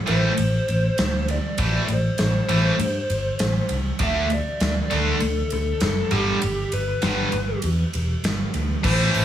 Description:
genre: hard rock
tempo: 99 BPM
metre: 4/4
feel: straight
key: unclear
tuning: A4 = 444 Hz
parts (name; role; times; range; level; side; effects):
- lead guitar through a small cranked amp; melody; 0.1-9.2 s; G4 to E5; -27 LUFS; left 1 dB; overdrive, tape echo
- heavy high-gain guitar; riff; 0.1-9.2 s; G2 to D4; -23 LUFS; equal; distortion
- picked electric bass; bass; 0.1-9.2 s; E1 to G2; -23 LUFS; equal; none
- huge arena drum kit; drums; 0.1-9.2 s; crash cymbal, hi-hat, kick drum, ride cymbal, snare drum; -26 LUFS; right 1 dB; none
room: studio ambience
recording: small room ambience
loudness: -20 LUFS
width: side -11 dB against mid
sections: 0.0-8.8 A section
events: none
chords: 0.0 Am; 4.0 D5; 6.1 G

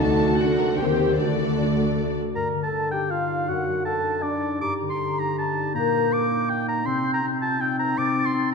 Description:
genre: classical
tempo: 160 BPM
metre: 3/4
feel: rubato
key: G minor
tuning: A4 = 440 Hz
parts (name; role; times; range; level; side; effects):
- dark symphonic violin section; melody; 0.0-2.1 s; D5 to A5; -32 LUFS; left 1 dB; none
- warm symphonic violin section; second line; 0.0-2.2 s; F#4 to D5; -29 LUFS; left 2 dB; none
- warm symphonic viola section; accompaniment; 0.0-2.2 s; A3 to G4; -27 LUFS; right 1 dB; none
- dark French horn section; sustained chords; 0.0-2.1 s; A3 to G4; -28 LUFS; left 1 dB; none
- concert harp; arpeggios; 0.0-8.5 s; F#2 to D5; -27 LUFS; left 7 dB; none
- clear symphonic double bass section; bass; 0.0-2.2 s; D2 to Eb2; -27 LUFS; right 5 dB; none
- warm symphonic cello section; bass; 0.0-2.2 s; D3 to Eb3; -31 LUFS; right 3 dB; none
- clear oboe; second line; 2.4-8.5 s; D5 to D6; -27 LUFS; right 2 dB; none
- dark clarinet; second line; 2.4-8.5 s; Bb3 to Bb4; -28 LUFS; right 1 dB; none
- mellow large flute ensemble; second line; 2.4-8.5 s; D5 to A6; -30 LUFS; left 1 dB; none
room: wet scoring stage reverb, RT60 1.7 s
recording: dark, warm production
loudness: -21 LUFS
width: side -5 dB against mid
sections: 0.0-2.4 A section; 2.4-8.5 A section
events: none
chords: 0.0 D; 0.8 Cm/Eb; 1.2 D; 2.4 G5; 3.5 D/F#; 4.6 Gm; 5.7 Gm/Bb; 6.9 Cm; 8.0 Adim/C

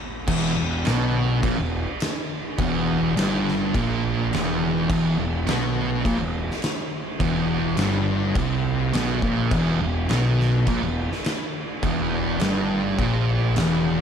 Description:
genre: stoner and doom metal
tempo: 104 BPM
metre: 4/4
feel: straight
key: unclear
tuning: A4 = 436 Hz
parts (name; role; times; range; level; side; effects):
- thick fuzz guitar; riff; 0.3-14.0 s; E2 to C3; -26 LUFS; left 10 dB; distortion
- thick fuzz guitar; riff; 0.3-14.0 s; E2 to C3; -24 LUFS; right 6 dB; distortion
- fuzz picked electric bass; bass; 0.3-14.0 s; E1 to C2; -28 LUFS; left 1 dB; overdrive
- oversized low-tuned drum kit; drums; 0.3-13.7 s; crash cymbal, kick drum, snare drum; -27 LUFS; equal; none
room: light reverb, small room ambience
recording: dark, warm production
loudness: -20 LUFS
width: side -7 dB against mid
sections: 0.3-14.0 A section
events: stop 0.0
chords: 0.3 Em

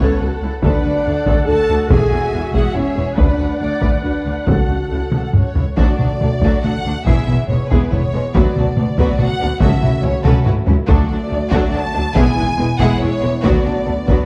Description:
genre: cinematic, epic orchestral film score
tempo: 141 BPM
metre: 3/4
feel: straight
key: unclear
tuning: A4 = 440 Hz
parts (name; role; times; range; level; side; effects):
- warm symphonic violin section; melody; 0.0-14.3 s; B4 to A5; -27 LUFS; equal; none
- warm symphonic violin section; second line; 0.0-14.3 s; G#3 to D5; -29 LUFS; equal; none
- warm symphonic viola section; accompaniment; 0.0-14.3 s; F#3 to F#5; -27 LUFS; equal; none
- dark French horn section; sustained chords; 0.0-14.3 s; A3 to A4; -25 LUFS; equal; none
- clear symphonic cello section; bass; 0.0-14.2 s; C#2 to E2; -26 LUFS; equal; none
- clear symphonic double bass section; bass; 0.0-14.2 s; E1 to D2; -24 LUFS; equal; none
- taiko ensemble; drums; 0.6-14.3 s; none; -20 LUFS; equal; none
- timpani; percussion; 4.5-5.1, 9.6-10.2 s; C#3; -27 LUFS; equal; none
room: moderate scoring stage reverb, RT60 1.9 s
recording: dark, warm production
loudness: -16 LUFS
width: mono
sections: 0.0-5.8 A section; 5.8-14.3 A section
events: drum fill 5.1-5.8, 10.2-10.9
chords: 0.0 F#m7/C#; 0.6 D; 1.9 E; 3.2 Bm/D; 4.5 F#m7/C#; 5.8 D; 7.1 E; 8.3 Bm/D; 9.6 F#m7/C#; 10.9 D; 12.2 E; 13.4 Bm/D

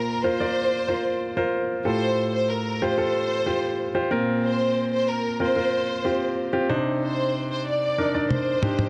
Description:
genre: piano-driven pop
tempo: 93 BPM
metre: 4/4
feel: straight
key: Bb major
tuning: A4 = 442 Hz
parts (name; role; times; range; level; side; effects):
- dark studio violin section; melody; 0.0-8.9 s; Bb4 to D5; -28 LUFS; equal; none
- clear baby grand piano; accompaniment; 0.0-8.9 s; A2 to D5; -26 LUFS; equal; none
- toms; drums; 8.3-8.9 s; none; -27 LUFS; equal; none
room: light reverb, small room ambience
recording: dark, warm production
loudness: -24 LUFS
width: mono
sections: 0.0-8.9 A section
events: drum fill 8.3-8.9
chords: 0.0 Bbsus2; 1.9 Fadd9/A; 4.1 Bbsus2; 6.7 Cmadd9

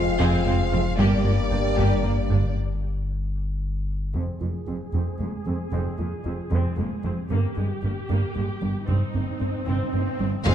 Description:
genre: cinematic, hybrid orchestral and electronic film score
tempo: 76 BPM (dotted quarters)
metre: 6/8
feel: straight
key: F dorian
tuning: A4 = 440 Hz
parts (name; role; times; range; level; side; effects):
- warm symphonic violin section; melody; 0.0-2.5, 10.5 s; D5 to F5; -30 LUFS; left 2 dB; low-pass filter
- bright trombone section; sustained chords; 0.0-2.6, 10.5 s; F2 to Ab3; -31 LUFS; right 4 dB; low-pass filter
- warm French horn section; sustained chords; 0.0-2.6, 10.5 s; Bb3 to F4; -29 LUFS; left 6 dB; low-pass filter
- glassy wavetable pluck; arpeggios; 0.0-10.5 s; C3 to G4; -34 LUFS; left 2 dB; chorus, low-pass filter, tape echo
- rubbery square bass; riff; 0.0-10.5 s; F2 to G3; -27 LUFS; equal; low-pass filter
- warm sub bass; bass; 0.0-4.1, 10.5 s; F1 to G1; -28 LUFS; left 1 dB; none
- rich symphonic violin section; second line; 0.2-2.4, 10.5 s; Bb3 to Ab4; -33 LUFS; left 2 dB; none
- rich studio viola section; accompaniment; 0.2-10.5 s; Ab3 to Ab4; -34 LUFS; right 1 dB; low-pass filter
- rich studio cello section; bass; 0.2-10.5 s; F2 to G2; -31 LUFS; right 2 dB; none
- rich symphonic double bass section; bass; 0.2-10.5 s; F1 to G1; -29 LUFS; right 2 dB; none
- swell and impact; sound effects; 9.1-10.5 s; none; -30 LUFS; right 1 dB; none
room: wet scoring stage reverb, RT60 1.8 s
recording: dark, warm production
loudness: -22 LUFS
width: side -10 dB against mid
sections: 0.0-4.1 A section; 4.1-10.5 B section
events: break 2.6-4.1; filter sweep 4.1-10.5; swell 9.1-10.5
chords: 0.0 Fm; 1.0 Gm; 2.6 N.C.; 4.1 Fm; 7.3 Gm; 8.9 Cm/G

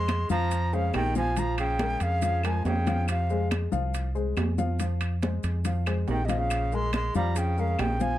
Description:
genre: Afro-Cuban jazz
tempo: 140 BPM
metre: 4/4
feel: straight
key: F minor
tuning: A4 = 439 Hz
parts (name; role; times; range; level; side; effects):
- breathy bright concert flute; melody; 0.0-3.5, 6.1-8.2 s; Eb5 to C6; -31 LUFS; left 1 dB; none
- warm tenor saxophone; second line; 0.0-3.5, 6.1-8.2 s; C3 to Ab3; -34 LUFS; right 5 dB; none
- dark baby grand piano; accompaniment; 0.0-8.2 s; F3 to F5; -32 LUFS; left 5 dB; none
- fingered electric bass; bass; 0.0-8.2 s; Bb1 to F2; -28 LUFS; equal; none
- claves; percussion; 0.1-8.0 s; none; -39 LUFS; left 4 dB; none
- congas; percussion; 0.1-8.2 s; none; -34 LUFS; equal; none
- maracas; percussion; 0.1-8.2 s; none; -45 LUFS; left 8 dB; none
- timbales; percussion; 0.1-8.0 s; none; -36 LUFS; right 6 dB; none
room: light reverb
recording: dark, warm production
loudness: -24 LUFS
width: side -14 dB against mid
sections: 0.0-8.2 A section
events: none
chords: 0.0 Fm; 1.4 Bbm7; 3.1 Fm; 6.5 Bbm7

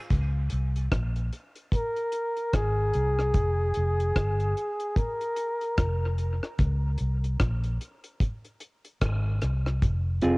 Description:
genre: dub reggae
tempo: 74 BPM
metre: 4/4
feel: swing 60% on 16ths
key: unclear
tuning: A4 = 440 Hz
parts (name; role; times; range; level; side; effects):
- semi-hollow electric guitar; accompaniment; 0.0, 10.2-10.4 s; C4 to Ab4; -25 LUFS; right 1 dB; high-pass filter, cassette tape
- vintage muted fingered electric bass; bass; 0.1-10.4 s; F1 to Db2; -26 LUFS; equal; none
- deep reggae drum kit; drums; 0.1-10.4 s; hi-hat, kick drum, rim click; -27 LUFS; equal; cassette tape
- breathy flugelhorn; melody; 1.8-6.1 s; Ab4 to Bb4; -29 LUFS; equal; cassette tape, dub echo
room: studio ambience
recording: home recording on cassette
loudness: -25 LUFS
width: side -28 dB against mid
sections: 0.1-10.4 A section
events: none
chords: 0.1 Db5; 3.3 Fm; 6.6 Db5; 9.8 Fm

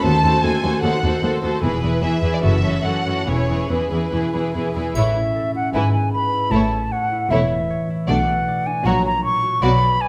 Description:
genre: classical, dramatic, fast romantic movement for symphony orchestra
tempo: 139-157 BPM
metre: 4/4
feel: rubato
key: A major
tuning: A4 = 440 Hz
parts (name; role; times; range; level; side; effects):
- warm symphonic violin section; melody; 0.0-9.8 s; B4 to A5; -27 LUFS; equal; none
- warm symphonic violin section; second line; 0.0-9.8 s; D4 to B#4; -29 LUFS; equal; none
- warm symphonic viola section; accompaniment; 0.0-9.8 s; E3 to F#4; -27 LUFS; equal; none
- concert harp; arpeggios; 0.0-10.1 s; E2 to D5; -27 LUFS; equal; none
- rich symphonic cello section; bass; 0.0-9.9 s; D#2 to B2; -27 LUFS; equal; none
- warm symphonic double bass section; bass; 0.0-9.9 s; E1 to D#2; -25 LUFS; equal; none
- silver concert flute; second line; 5.0-10.1 s; E5 to C#6; -23 LUFS; equal; none
- triangle; percussion; 5.0-5.7 s; none; -42 LUFS; equal; none
room: moderate recital hall reverb, RT60 1.5 s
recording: close, detailed microphones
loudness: -20 LUFS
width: mono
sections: 0.0-5.0 A section; 5.0-10.1 B section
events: none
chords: 0.0 D#dim7; 1.6 E; 2.4 F#m7; 3.3 E; 5.0 A; 5.8 E/G#; 6.5 A; 8.1 Bm7; 8.9 F#/A#

